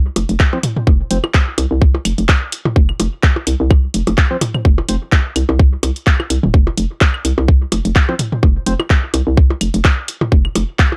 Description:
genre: minimal techno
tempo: 127 BPM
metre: 4/4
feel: swing 55% on 16ths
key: unclear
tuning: A4 = 440 Hz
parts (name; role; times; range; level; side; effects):
- hollow knocking FM bass; bass; 0.0-10.6 s; Eb1 to C2; -19 LUFS; equal; sidechain pumping
- booming analog drum machine; drums; 0.2-10.9 s; handclaps, hi-hat; -21 LUFS; equal; none
- electronic percussion blips, claves and toms; percussion; 0.2-11.0 s; none; -23 LUFS; equal; analog delay
- electronic kick drum; drums; 0.4-10.9 s; none; -14 LUFS; equal; none
- percussive organ stab; stabs; 0.5-1.2, 4.3-5.0, 8.1-8.7 s; F3 to C5; -26 LUFS; equal; chorus, analog delay
room: little or no reverb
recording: dry, gritty hardware recording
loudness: -15 LUFS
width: mono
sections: 0.0-11.0 A section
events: filter sweep on synth stab 0.0-11.0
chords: 0.0 F5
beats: 0.40 | 0.87 1.34 1.81 2.29 | 2.76 3.23 3.71 4.18 | 4.65 5.12 5.59 6.07 | 6.54 7.01 7.48 7.96 | 8.43 8.90 9.37 9.85 | 10.32 10.79

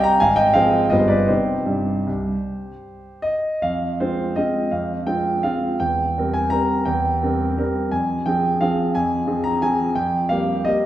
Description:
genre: classical, piano waltz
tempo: 150-189 BPM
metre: 3/4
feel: rubato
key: C minor, F minor from 3.6 s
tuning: A4 = 441 Hz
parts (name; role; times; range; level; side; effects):
- clear concert grand piano; solo; 0.0-10.9 s; G1 to Bb5; -18 LUFS; equal; none
room: wet recital hall reverb, RT60 1.8 s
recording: heard from further back in the room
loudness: -18 LUFS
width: side -13 dB against mid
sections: 0.0-3.6 A section; 3.6-10.9 B section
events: none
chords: 0.2 Fm/Ab; 0.9 G7; 1.3 Cm; 3.6 Fm; 5.8 C7/E; 7.9 Fm; 10.0 Gm7/F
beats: | 0.22 0.56 0.92 | 1.29 1.68 2.08 | 2.45 2.84 3.24 | 3.63 4.00 4.38 | 4.73 5.08 5.45 | 5.82 6.18 6.53 | 6.88 7.24 7.60 | 7.95 8.29 8.63 | 8.96 9.29 9.64 | 9.97 10.31 10.66

